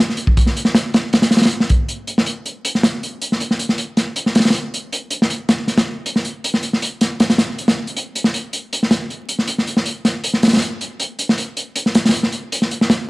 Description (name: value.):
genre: drum and bass.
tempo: 158 BPM.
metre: 4/4.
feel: swing 53% on 16ths.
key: none.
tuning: none.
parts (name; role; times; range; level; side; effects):
crunchy breakbeat drum kit; drums; 0.1-13.0 s; hi-hat, kick drum, snare drum; -15 LUFS; equal; none.
room: light reverb.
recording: dry, gritty hardware recording, vinyl crackle.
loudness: -16 LUFS.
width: side -25 dB against mid.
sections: 0.0-1.9 A section; 1.9-13.1 B section.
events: drop 0.0-1.9.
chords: none.